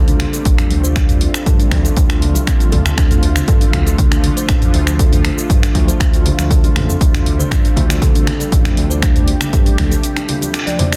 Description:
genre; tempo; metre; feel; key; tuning
afro house; 119 BPM; 4/4; straight; unclear; A4 = 440 Hz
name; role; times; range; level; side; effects
warm analog pad; sustained chords; 0.0-11.0 s; C3 to G4; -27 LUFS; equal; chorus, sidechain pumping
kalimba; arpeggios; 0.0-10.9 s; C4 to D5; -25 LUFS; equal; sidechain pumping
smooth synth bass; bass; 0.0-9.9 s; A1 to G2; -21 LUFS; equal; sidechain pumping
house drum kit; drums; 0.1-11.0 s; finger snaps, hi-hat, shaker, toms; -23 LUFS; equal; soft clipping on snare
congas; percussion; 0.1-10.9 s; none; -27 LUFS; equal; none
electronic kick drum; drums; 0.5-9.9 s; none; -16 LUFS; equal; none
room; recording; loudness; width
little or no reverb; dense, heavily limited modern master; -14 LUFS; mono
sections
0.0-11.0 A section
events
break 10.0-11.0; band accent 10.5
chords
0.0 Fadd9

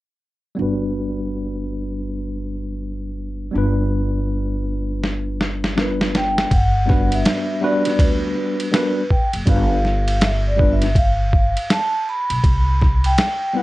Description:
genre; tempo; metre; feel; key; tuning
hip hop, jazz-hop; 81 BPM; 4/4; swing 63% on 16ths; G major; A4 = 438 Hz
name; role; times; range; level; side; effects
bright tine electric piano; accompaniment; 0.6-13.6 s; G3 to B4; -23 LUFS; left 1 dB; overdrive, fast stereo tremolo, low-pass filter
upright bass; bass; 0.6-13.1 s; F#1 to D2; -22 LUFS; equal; none
boom bap sampler-style drum kit; drums; 5.0-13.4 s; hi-hat, kick drum, ride cymbal, snare drum; -19 LUFS; equal; none
vibraphone with soft mallets; melody; 5.8-13.6 s; Bb4 to B5; -22 LUFS; equal; none
room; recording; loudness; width
light reverb; none; -17 LUFS; side -18 dB against mid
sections
0.6-6.5 A section; 6.5-13.6 B section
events
filter sweep on tine electric piano 0.6-6.5; drum fill 5.0-6.5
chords
0.6 Gmaj7; 3.5 G7; 6.5 Gmaj7; 9.5 G7; 12.4 Cmaj7(no3)

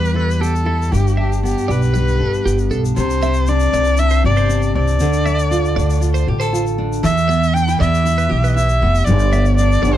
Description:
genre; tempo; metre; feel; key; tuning
acoustic pop; 118 BPM; 4/4; straight; C major; A4 = 440 Hz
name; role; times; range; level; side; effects
warm erhu; melody; 0.0-10.0 s; G4 to G5; -20 LUFS; equal; none
nylon-string guitar; accompaniment; 0.0-10.0 s; G2 to A4; -19 LUFS; equal; none
twelve-string electric guitar; arpeggios; 0.0-10.0 s; G4 to E5; -26 LUFS; right 5 dB; phaser
upright bass; bass; 0.0-10.0 s; F1 to E2; -17 LUFS; equal; none
egg shaker; percussion; 0.1-10.0 s; none; -35 LUFS; left 9 dB; none
room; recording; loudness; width
small room ambience; dry, close 1970s-style studio recording; -14 LUFS; side -12 dB against mid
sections
0.0-3.0 A section; 3.0-10.0 B section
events
none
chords
0.0 Em; 0.9 G; 3.0 Csus2; 5.0 Dm; 7.0 Em; 9.1 G

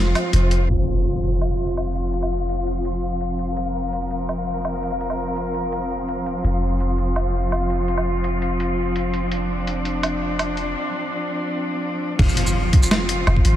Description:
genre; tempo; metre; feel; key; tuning
half-time drum and bass; 167 BPM; 4/4; half-time; unclear; A4 = 444 Hz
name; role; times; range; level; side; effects
muted studio cello section; sustained chords; 0.0-13.6 s; F3 to Bb4; -24 LUFS; equal; vintage 12-bit sampler grit, sidechain pumping
long sustained 808-style bass; bass; 0.0-13.6 s; F1 to Ab1; -23 LUFS; equal; none
pulsing gated texture; texture; 0.0-10.8 s; C5 to F5; -32 LUFS; left 4 dB; chorus, built-in reverb
boom bap sampler-style drum kit; drums; 0.2-13.5 s; crash cymbal, hi-hat, shaker, snare drum, woodblock; -26 LUFS; right 1 dB; none
impact; sound effects; 0.7-2.1, 12.2-13.6 s; none; -25 LUFS; equal; none
electronic kick drum; drums; 12.2-13.4 s; none; -15 LUFS; equal; none
room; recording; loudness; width
light reverb; low-pass filter; -20 LUFS; side -12 dB against mid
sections
0.7-12.2 A section; 12.2-13.6 B section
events
impact 0.7-2.1, 12.2-13.6; filter sweep 0.7-12.2; drop 12.2-13.6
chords
0.0 F5

